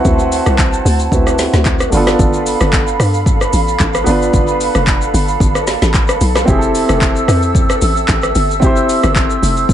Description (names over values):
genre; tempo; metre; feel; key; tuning
amapiano; 112 BPM; 4/4; swing 55% on 16ths; unclear; A4 = 440 Hz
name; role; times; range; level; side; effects
warm baby grand piano; accompaniment; 0.0-9.7 s; A3 to C5; -17 LUFS; right 1 dB; tape echo
large flute ensemble; sustained chords; 0.0-9.7 s; C4 to E6; -19 LUFS; right 2 dB; none
hollow log drum bass; bass; 0.0-9.7 s; F1 to G2; -16 LUFS; equal; none
afro-pop drum kit; drums; 0.0-9.7 s; handclaps, hi-hat, kick drum, rim click, shaker, snare drum; -15 LUFS; equal; overdrive
room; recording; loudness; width
digital ambience; echo-heavy mix, nothing above 10.9 kHz; -11 LUFS; side -10 dB against mid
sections
0.0-9.7 A section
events
none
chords
0.0 D7; 1.9 G9; 6.5 Fmaj7